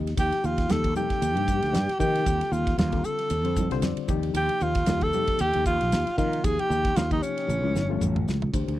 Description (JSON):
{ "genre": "electric jazz fusion", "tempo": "115 BPM", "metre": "4/4", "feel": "swing 56% on 16ths", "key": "Eb lydian", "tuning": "A4 = 440 Hz", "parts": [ { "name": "reed electric piano", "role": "accompaniment", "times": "0.0-8.8 s", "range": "C3 to Eb5", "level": "-32 LUFS", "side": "left 10 dB", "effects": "harmonic tremolo" }, { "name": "sustaining fretless electric bass", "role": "bass", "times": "0.0-8.8 s", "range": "G1 to Eb3", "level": "-27 LUFS", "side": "equal", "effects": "lush chorus" }, { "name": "damped 70s drum kit", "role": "drums", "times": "0.1-8.8 s", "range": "hi-hat, kick drum, ride cymbal, snare drum, toms", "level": "-29 LUFS", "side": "equal", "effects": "none" }, { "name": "breathy alto saxophone", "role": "melody", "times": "0.2-8.3 s", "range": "Db4 to A4", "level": "-26 LUFS", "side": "right 1 dB", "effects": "tape echo" }, { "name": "congas", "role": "percussion", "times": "0.2-8.6 s", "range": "none", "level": "-32 LUFS", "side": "right 3 dB", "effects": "none" } ], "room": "little or no reverb", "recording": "dry, close 1970s-style studio recording", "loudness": "-22 LUFS", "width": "side -14 dB against mid", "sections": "0.0-8.5 A section", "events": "reed electric piano fill 0.0, 3.6-4.4; drum fill 7.5-8.5", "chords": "0.2 Ebadd9; 2.3 Dm7/Eb; 4.1 Cm7/Eb; 6.4 Eb13; 7.5 A7b13" }